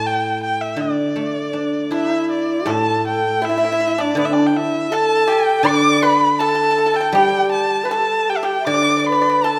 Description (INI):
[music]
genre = chinese traditional, Chinese chamber ensemble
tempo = 80 BPM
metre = 2/4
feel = rubato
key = D zhi mode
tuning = A4 = 441 Hz
[part]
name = rich erhu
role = melody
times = 0.0-9.6 s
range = D5 to D6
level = -21 LUFS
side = equal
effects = none
[part]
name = guzheng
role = accompaniment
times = 0.0-9.6 s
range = A2 to E4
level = -24 LUFS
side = equal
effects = none
[part]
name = breathy bright xiao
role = second line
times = 1.9-9.6 s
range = D4 to E5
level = -23 LUFS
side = equal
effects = none
[part]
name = pipa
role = second line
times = 1.9-9.6 s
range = D4 to D5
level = -26 LUFS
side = equal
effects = none
[sound]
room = wet recital hall reverb, RT60 1.7 s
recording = none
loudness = -18 LUFS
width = mono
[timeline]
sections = 0.0-2.7 A section; 2.7-9.6 B section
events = none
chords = none